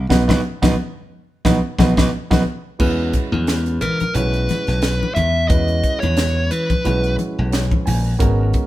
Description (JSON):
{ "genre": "electric jazz fusion", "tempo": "89 BPM", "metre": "4/4", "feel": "swing 56% on 16ths", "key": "unclear", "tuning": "A4 = 440 Hz", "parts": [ { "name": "glassy slap bass", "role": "bass", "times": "0.0-8.5 s", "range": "Ab1 to E3", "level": "-19 LUFS", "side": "equal", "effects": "none" }, { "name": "dark grand piano", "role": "accompaniment", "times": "0.1-8.7 s", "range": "G#3 to G#5", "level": "-24 LUFS", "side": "right 4 dB", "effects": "none" }, { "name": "crisp fusion drum kit", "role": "drums", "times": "0.1-8.7 s", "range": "crash cymbal, hi-hat, kick drum, snare drum", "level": "-20 LUFS", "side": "equal", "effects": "none" }, { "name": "congas", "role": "percussion", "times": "0.1-8.7 s", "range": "none", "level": "-21 LUFS", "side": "left 3 dB", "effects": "none" }, { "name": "dark smooth lead guitar", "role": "melody", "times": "3.8-7.1 s", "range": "Bb4 to E5", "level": "-21 LUFS", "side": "equal", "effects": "overdrive" } ], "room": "light reverb", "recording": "band playing live in one room", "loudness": "-16 LUFS", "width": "side -15 dB against mid", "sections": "0.0-2.8 A section; 2.8-8.7 B section", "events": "band accent 0.1-2.8; grand piano fill 1.8-2.8, 7.2-8.2", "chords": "0.1 B; 2.8 E69", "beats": "| 0.11 0.78 1.46 2.13 | 2.81 3.48 4.15 4.83 | 5.50 6.18 6.86 7.53 | 8.21" }